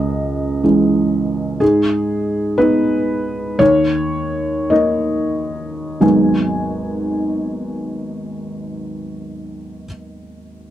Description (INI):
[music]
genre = neoclassical minimalist piano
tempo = 43-63 BPM (dotted quarters)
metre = 6/8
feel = rubato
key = G# minor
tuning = A4 = 440 Hz
[part]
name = felt-muted upright piano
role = solo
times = 0.0-10.7 s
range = G#1 to G#5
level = -16 LUFS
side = equal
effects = none
[sound]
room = light reverb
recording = dry, close 1970s-style studio recording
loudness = -15 LUFS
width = side -12 dB against mid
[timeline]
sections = 0.0-1.6 A section; 1.6-6.0 B section; 6.0-10.7 C section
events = slowing down 0.6-6.0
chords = 0.0 C#madd9; 1.6 G#m; 3.6 D#5; 6.0 G#m7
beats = 0.63 | 1.61 2.58 | 3.59 4.70 | 6.02 7.36 | 8.70 10.04